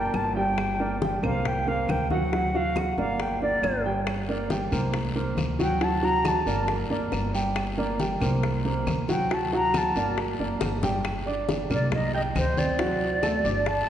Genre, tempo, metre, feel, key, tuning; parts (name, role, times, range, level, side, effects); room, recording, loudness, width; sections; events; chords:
latin, Cuban son and guajira; 138 BPM; 4/4; straight; G harmonic minor; A4 = 438 Hz
mellow silver concert flute; melody; 0.0-13.9 s; C5 to Bb5; -28 LUFS; left 1 dB
warm grand piano; arpeggios; 0.0-13.8 s; F#3 to G6; -28 LUFS; right 2 dB
upright bass; bass; 0.0-13.9 s; F#1 to D2; -30 LUFS; equal
bongos; percussion; 0.1-13.9 s; -35 LUFS; left 5 dB
claves; percussion; 0.1-13.4 s; -45 LUFS; right 1 dB
congas; percussion; 0.1-13.9 s; -34 LUFS; left 1 dB
guiro; percussion; 4.1-13.9 s; -41 LUFS; left 4 dB
wet church reverb, RT60 3.3 s; recorded in a church or concert hall, nothing above 10.8 kHz; -23 LUFS; side -10 dB against mid
0.0-11.0 A section; 11.0-13.9 B section
flute solo 0.0-11.0; drum fill 10.6-11.0
0.0 Gm; 1.4 D7alt/C; 2.3 D; 3.2 Gm; 4.9 Daug7/C; 5.8 D; 6.7 Gm; 8.4 Daug7/C; 9.3 D; 10.2 Gm; 11.9 C5; 12.8 D